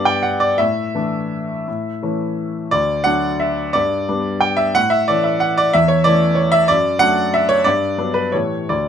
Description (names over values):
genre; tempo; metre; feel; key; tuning
classical, piano waltz; 162-195 BPM; 3/4; rubato; unclear; A4 = 441 Hz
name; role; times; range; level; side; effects
warm grand piano; solo; 0.0-8.9 s; D2 to G5; -15 LUFS; equal; none
room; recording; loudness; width
light reverb; close, detailed microphones; -15 LUFS; side -8 dB against mid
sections
0.0-8.9 A section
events
none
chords
0.0 G; 0.6 Asus4; 1.7 A; 2.7 D; 3.7 G; 4.7 A; 6.7 D/F#; 7.7 Gmaj7; 8.3 A7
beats
0.24 | 0.59 0.95 1.31 | 1.67 2.02 2.38 | 2.73 3.06 3.41 | 3.75 4.08 4.42 | 4.75 5.08 5.41 | 5.74 6.06 6.38 | 6.69 7.01 7.33 | 7.66 7.98 8.33 | 8.70